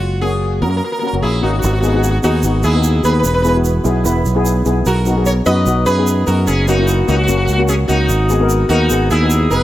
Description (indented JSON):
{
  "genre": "calypso",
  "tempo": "149 BPM",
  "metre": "4/4",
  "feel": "straight",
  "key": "unclear",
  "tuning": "A4 = 441 Hz",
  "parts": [
    { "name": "sitar", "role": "melody", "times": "0.0-9.6 s", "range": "C#4 to D#5", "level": "-18 LUFS", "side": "equal", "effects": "tape echo" },
    { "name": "fingered electric bass", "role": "bass", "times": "0.0-9.6 s", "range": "E1 to F#2", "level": "-15 LUFS", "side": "equal", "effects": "none" },
    { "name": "steel pan", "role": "accompaniment", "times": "0.2-9.6 s", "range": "A#3 to B4", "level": "-19 LUFS", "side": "left 2 dB", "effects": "none" },
    { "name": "egg shaker", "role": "percussion", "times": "1.6-9.6 s", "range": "none", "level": "-29 LUFS", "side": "right 6 dB", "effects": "none" }
  ],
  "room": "light reverb, small room ambience",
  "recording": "none",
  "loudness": "-12 LUFS",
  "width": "side -14 dB against mid",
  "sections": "0.0-1.6 A section; 1.6-9.6 B section",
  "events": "none",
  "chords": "0.0 F#; 1.6 G#m7; 3.2 E; 4.9 Bmaj7; 6.5 F#; 8.1 G#m7"
}